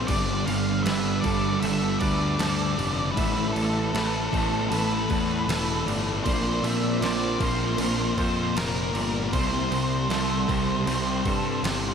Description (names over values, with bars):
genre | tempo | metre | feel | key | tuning
rock, shoegaze and dream pop | 78 BPM | 4/4 | straight | C major | A4 = 440 Hz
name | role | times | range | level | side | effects
electric guitar through a small old amp | arpeggios | 0.0-11.9 s | G4 to E5 | -34 LUFS | right 1 dB | ensemble chorus, analog delay
overdriven semi-hollow guitar | riff | 0.0-11.9 s | C3 to Bb4 | -31 LUFS | right 9 dB | reverse reverb
thick fuzz guitar | riff | 0.0-11.9 s | G2 to C4 | -28 LUFS | left 6 dB | distortion, wide subtle chorus
fuzz picked electric bass | bass | 0.0-11.9 s | E1 to G2 | -29 LUFS | equal | overdrive
octave-fuzz lead guitar | melody | 0.1-11.6 s | A4 to F5 | -31 LUFS | right 1 dB | distortion, analog delay
detuned 8-bit digital drum machine | drums | 0.1-11.8 s | crash cymbal, kick drum, snare drum | -31 LUFS | right 1 dB | none
room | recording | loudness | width
wet cathedral reverb, RT60 5.0 s | dreamy mix soaked in reverb | -22 LUFS | side -7 dB against mid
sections
0.0-11.9 A section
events
none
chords
0.1 Gadd9; 3.2 Asus2; 6.2 Bbsus2; 9.3 C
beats
| 0.09 0.86 1.62 2.40 | 3.17 3.94 4.71 5.48 | 6.25 7.02 7.79 8.56 | 9.33 10.10 10.87 11.64